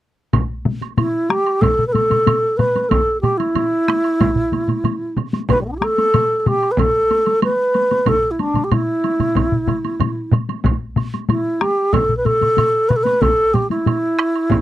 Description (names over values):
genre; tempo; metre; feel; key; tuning
japanese traditional, taiko drum ensemble; 93 BPM; 4/4; straight; A suspended pentatonic; A4 = 440 Hz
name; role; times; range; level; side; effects
solo taiko drums; percussion; 0.3-13.1 s; none; -21 LUFS; left 3 dB; none
taiko ensemble; percussion; 0.3-14.6 s; none; -24 LUFS; left 3 dB; none
taiko ensemble; percussion; 0.3-14.6 s; none; -22 LUFS; right 1 dB; none
woodblock; percussion; 0.3-14.6 s; none; -28 LUFS; right 16 dB; none
bright reedy wooden-headed alto flute; melody; 1.0-14.6 s; G3 to B4; -16 LUFS; right 1 dB; none
taiko ensemble; percussion; 2.9-14.6 s; none; -22 LUFS; right 3 dB; none
room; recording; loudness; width
light reverb; dry, close 1970s-style studio recording; -15 LUFS; side -14 dB against mid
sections
0.3-14.6 A section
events
none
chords
none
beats
| 0.34 0.98 1.63 2.27 | 2.92 3.56 4.21 4.85 | 5.50 6.14 6.78 7.43 | 8.07 8.72 9.36 10.01 | 10.65 11.29 11.94 12.58 | 13.22 13.87 14.51